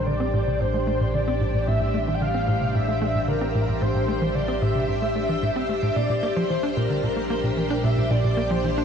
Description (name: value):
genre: ambient, sequencer-driven space music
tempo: 112 BPM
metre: 4/4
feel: straight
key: unclear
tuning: A4 = 440 Hz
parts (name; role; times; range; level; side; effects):
- breathy flute-like synth lead; melody; 0.0-8.8 s; Bb4 to G5; -27 LUFS; left 1 dB; ensemble chorus, analog delay
- string machine, full ensemble; sustained chords; 0.0-8.8 s; G3 to G5; -28 LUFS; equal; ensemble chorus
- analog drone; bass; 0.0-8.8 s; A1 to Bb1; -28 LUFS; equal; chorus
- tight sequencer bass; riff; 0.1-8.8 s; A2 to D4; -25 LUFS; equal; analog chorus, analog delay
room: moderate huge ambient reverb, RT60 7.8 s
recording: cassette tape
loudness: -21 LUFS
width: side -7 dB against mid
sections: 0.0-8.8 A section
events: none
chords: 0.0 Am7; 6.0 Bb